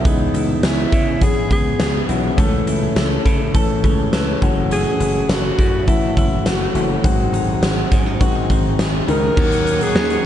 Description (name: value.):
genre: 1980s-style pop.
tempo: 103 BPM.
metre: 4/4.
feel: straight.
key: C# minor.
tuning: A4 = 442 Hz.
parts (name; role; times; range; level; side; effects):
warm concert grand piano; accompaniment; 0.0-10.3 s; D#3 to E5; -22 LUFS; left 4 dB; none.
twelve-string electric guitar; riff; 0.0-10.3 s; F#3 to A#4; -27 LUFS; right 5 dB; wide subtle chorus, tape echo.
slap bass; bass; 0.0-10.2 s; F#1 to C#3; -22 LUFS; equal; none.
warm alto saxophone; melody; 0.1-10.3 s; D#4 to A#4; -23 LUFS; equal; tape echo.
huge arena drum kit; drums; 0.1-10.2 s; crash cymbal, hi-hat, kick drum, snare drum; -18 LUFS; equal; none.
pipe organ, soft reed; sustained chords; 9.4-10.3 s; C#5 to D#6; -27 LUFS; equal; none.
room: light reverb.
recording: dark, warm production, nothing above 10.3 kHz.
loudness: -15 LUFS.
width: side -10 dB against mid.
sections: 0.0-9.4 A section.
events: none.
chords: 0.1 C#m7; 2.4 A/C#; 4.4 F#m7; 7.0 G#7; 9.4 D#m7.